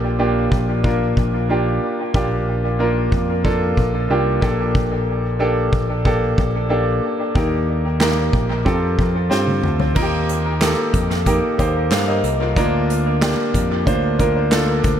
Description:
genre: piano-driven pop.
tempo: 92 BPM.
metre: 4/4.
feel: straight.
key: Bb major.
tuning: A4 = 442 Hz.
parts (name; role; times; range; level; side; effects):
bright concert grand piano; accompaniment; 0.0-15.0 s; Bb2 to F5; -19 LUFS; equal; dub echo.
overdriven picked electric bass; bass; 0.0-15.0 s; Bb1 to G2; -21 LUFS; equal; none.
unplugged drum kit; drums; 0.5-15.0 s; crash cymbal, handclaps, hi-hat, kick drum, snare drum, toms; -21 LUFS; equal; dub echo.
room: light reverb, studio reverb.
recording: echo-heavy mix.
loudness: -16 LUFS.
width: side -9 dB against mid.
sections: 0.0-10.0 A section; 10.0-15.0 B section.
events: drum fill 9.3-10.0.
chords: 0.0 Bb6; 4.4 Gmadd9/Bb; 7.4 Eb; 8.7 Fadd9; 10.0 Eb; 12.6 Bb/D.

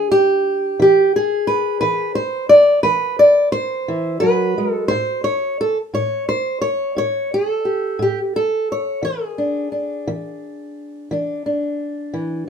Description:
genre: acoustic country blues, solo or duo.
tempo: 58 BPM (dotted quarters).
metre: 12/8.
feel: straight.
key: unclear.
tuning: A4 = 438 Hz.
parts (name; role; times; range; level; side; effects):
fingerpicked old ladder-braced acoustic guitar; solo; 0.0-12.5 s; A2 to D5; -16 LUFS; equal; none.
room: moderate studio reverb, RT60 0.6 s.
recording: minimal, uncompressed stereo recording.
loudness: -16 LUFS.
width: side -7 dB against mid.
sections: 0.0-12.5 A section.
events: none.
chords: 0.0 E7; 4.9 A7#9; 9.0 E7.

